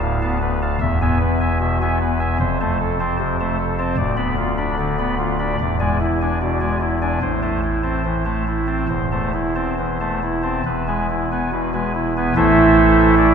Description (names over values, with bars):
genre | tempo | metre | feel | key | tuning
classical, chorale-style piece for pipe organ | 68-76 BPM | 4/4 | rubato | A minor | A4 = 440 Hz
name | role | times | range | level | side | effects
chamber organ, soft reed | solo | 0.0-13.3 s | D1 to B5 | -17 LUFS | equal | none
room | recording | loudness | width
wet church reverb, RT60 2.7 s | heard from further back in the room | -17 LUFS | side -7 dB against mid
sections
0.0-12.4 A section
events
none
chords
0.0 Bm7b5/D; 0.8 E; 2.4 F; 4.0 Bdim/D; 5.6 E7; 7.2 Am; 8.9 Am/E; 10.7 E; 12.4 Am